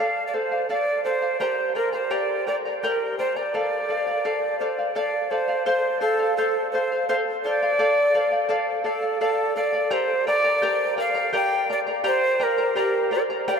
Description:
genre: andean folk, Andean ensemble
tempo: 84 BPM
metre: 3/4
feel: straight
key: D minor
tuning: A4 = 439 Hz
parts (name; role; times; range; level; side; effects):
- breathy quena; melody; 0.0-13.6 s; A4 to G5; -22 LUFS; right 1 dB; none
- charango; accompaniment; 0.0-13.6 s; G4 to Bb5; -25 LUFS; left 1 dB; none
- polished pan flute; second line; 12.8-13.6 s; G4 to D5; -28 LUFS; equal; none
room: wet huge ambient reverb, RT60 8.4 s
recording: in a vast, echoing space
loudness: -21 LUFS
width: side -6 dB against mid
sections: 0.0-5.7 A section; 5.7-13.6 A section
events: none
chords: 0.0 Dm; 1.4 Gm; 3.5 Dm; 5.7 F; 7.8 Dm; 9.9 Gm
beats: 0.69 | 1.40 2.11 2.82 | 3.53 4.24 4.95 | 5.66 6.37 7.08 | 7.79 8.50 9.21 | 9.92 10.63 11.34 | 12.05 12.77 13.48

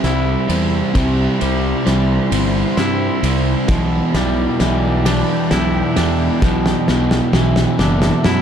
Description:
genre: post-rock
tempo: 44 BPM (dotted quarters)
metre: 6/8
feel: straight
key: unclear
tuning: A4 = 440 Hz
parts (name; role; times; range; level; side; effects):
- lush unison pad; sustained chords; 0.0-8.4 s; E4 to C6; -28 LUFS; right 1 dB; chorus
- twangy electric guitar; arpeggios; 0.0-8.4 s; B2 to E4; -23 LUFS; left 3 dB; analog delay
- crunchy overdriven guitar; riff; 0.0-8.4 s; E2 to C4; -18 LUFS; right 1 dB; none
- fuzz fingered electric bass; bass; 0.0-8.4 s; F#1 to G2; -19 LUFS; equal; overdrive
- loose indie drum kit; drums; 0.0-8.4 s; kick drum, ride cymbal, snare drum; -21 LUFS; equal; none
room: studio reverb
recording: dark, warm production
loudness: -14 LUFS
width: side -8 dB against mid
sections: 0.0-8.4 A section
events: build-up 0.0-8.4; drum fill 0.0-8.4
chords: 0.0 Cmaj7; 3.7 Em7/B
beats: | 0.96 2.33 | 3.70 5.06 | 6.43 7.79

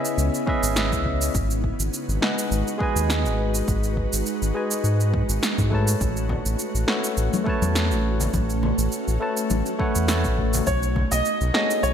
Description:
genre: sunset chillout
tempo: 103 BPM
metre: 4/4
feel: swing 54% on 16ths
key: A lydian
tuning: A4 = 440 Hz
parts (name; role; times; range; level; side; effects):
- barky tine electric piano; accompaniment; 0.0-11.9 s; G#3 to A5; -27 LUFS; moving between left 4 dB and right 4 dB; auto-pan, ping-pong delay
- ethereal airy pad; sustained chords; 0.0-11.9 s; C#3 to B4; -29 LUFS; equal; ensemble chorus, built-in reverb
- electronic cabasa and snare drum; drums; 0.1-11.9 s; none; -27 LUFS; right 1 dB; overdrive
- round analog bass; bass; 0.2-11.9 s; G#1 to G#2; -23 LUFS; equal; none
- electronic kick drum; drums; 0.5-11.1 s; none; -28 LUFS; equal; overdrive
- congas; percussion; 6.3-11.1 s; none; -30 LUFS; left 4 dB; none
- dark baby grand piano; melody; 10.7-11.9 s; C#5 to D#5; -24 LUFS; equal; wide subtle chorus
room: light reverb, digital ambience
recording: bright 1980s-style digital production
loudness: -20 LUFS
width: side -8 dB against mid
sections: 0.0-11.9 A section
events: none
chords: 0.0 C#m9; 1.3 G#m7; 6.0 A6; 10.7 B13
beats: 0.18 0.77 | 1.35 1.93 2.51 3.10 | 3.68 4.26 4.84 5.43 | 6.01 6.59 7.17 7.76 | 8.34 8.92 9.50 10.09 | 10.67 11.25 11.83

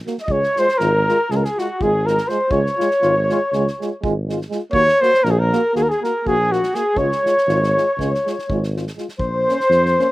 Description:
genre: balkan folk, Balkan brass band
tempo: 242 BPM (eighths)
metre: 9/8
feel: straight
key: Db major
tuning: A4 = 440 Hz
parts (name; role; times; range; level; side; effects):
- mellow euphonium; accompaniment; 0.1-10.1 s; Ab3 to Bb3; -26 LUFS; right 5 dB; slapback echo
- mellow trombone; accompaniment; 0.1-10.1 s; Db4 to Gb4; -27 LUFS; left 4 dB; slapback echo
- unplugged drum kit; percussion; 0.1-10.0 s; kick drum, snare drum; -32 LUFS; equal; none
- dark trumpet; melody; 0.2-10.1 s; Gb4 to Eb5; -18 LUFS; equal; none
- warm alto saxophone; second line; 0.2-10.1 s; Gb4 to Eb5; -23 LUFS; left 2 dB; slapback echo
- mellow tuba; bass; 0.3-10.0 s; Ab1 to F2; -22 LUFS; equal; none
room: little or no reverb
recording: recorded outdoors, with no room sound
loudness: -16 LUFS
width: side -18 dB against mid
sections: 0.0-9.2 A section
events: none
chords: 0.3 Db; 4.7 Ebm; 7.0 Db; 9.2 Bbm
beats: 0.03 | 0.28 0.53 0.77 1.02 1.27 1.51 1.76 2.01 2.26 | 2.50 2.75 3.00 3.25 3.49 3.74 3.99 4.23 4.48 | 4.73 4.98 5.22 5.47 5.72 5.97 6.21 6.46 6.71 | 6.96 7.20 7.45 7.70 7.95 8.19 8.44 8.69 8.94 | 9.19 9.43 9.68 9.93

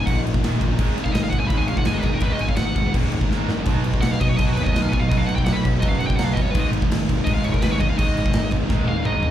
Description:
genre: heavy metal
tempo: 166 BPM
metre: 4/4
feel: straight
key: unclear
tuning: A4 = 440 Hz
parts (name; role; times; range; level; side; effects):
- high-gain lead guitar; melody; 0.0-9.3 s; F#4 to Cb6; -27 LUFS; equal; distortion, ping-pong delay
- thick fuzz guitar; riff; 0.0-9.3 s; Eb2 to F#4; -28 LUFS; equal; distortion, slapback echo
- tight distorted guitar; riff; 0.0-9.3 s; Eb2 to B3; -31 LUFS; left 12 dB; distortion
- tight distorted guitar; riff; 0.0-9.3 s; Eb2 to B3; -29 LUFS; right 10 dB; distortion, slapback echo
- fuzz picked electric bass; bass; 0.0-9.3 s; Eb1 to D#2; -24 LUFS; equal; overdrive
- big rock drum kit; drums; 0.1-9.3 s; crash cymbal, kick drum, snare drum, toms; -22 LUFS; equal; none
room: little or no reverb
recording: live gig heard through the venue's PA, club reverb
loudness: -18 LUFS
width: side -11 dB against mid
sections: 0.0-9.3 A section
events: lead electric guitar solo 0.0-9.3; drum fill 3.3-3.7, 8.7-9.3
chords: 0.0 Ebm; 0.8 Abm; 3.7 B; 6.5 Abm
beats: 0.06 0.42 | 0.78 1.14 1.50 1.86 | 2.23 2.58 2.95 3.31 | 3.67 4.03 4.39 4.75 | 5.11 5.47 5.83 6.19 | 6.55 6.91 7.27 7.63 | 7.99 8.35 8.71 9.07

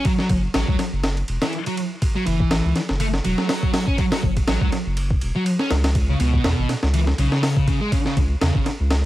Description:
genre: breakbeat, breaks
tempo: 122 BPM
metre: 4/4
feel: swing 55% on 16ths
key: unclear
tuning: A4 = 441 Hz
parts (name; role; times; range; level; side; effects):
- thick fuzz guitar; riff; 0.0-8.6 s; B2 to C#4; -23 LUFS; equal; distortion, digital delay
- breakbeat sampler-style drum kit; drums; 0.0-9.0 s; hi-hat, kick drum, ride cymbal, snare drum; -22 LUFS; equal; none
- saturated sub bass; bass; 0.3-9.1 s; E1 to E2; -21 LUFS; equal; none
room: little or no reverb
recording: vinyl crackle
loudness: -18 LUFS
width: side -15 dB against mid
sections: 0.0-9.1 A section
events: none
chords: 0.0 N.C.; 6.0 C#7(no3)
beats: | 0.05 0.55 1.04 1.53 | 2.02 2.51 3.00 3.50 | 3.99 4.48 4.97 5.46 | 5.96 6.45 6.94 7.43 | 7.92 8.41 8.91

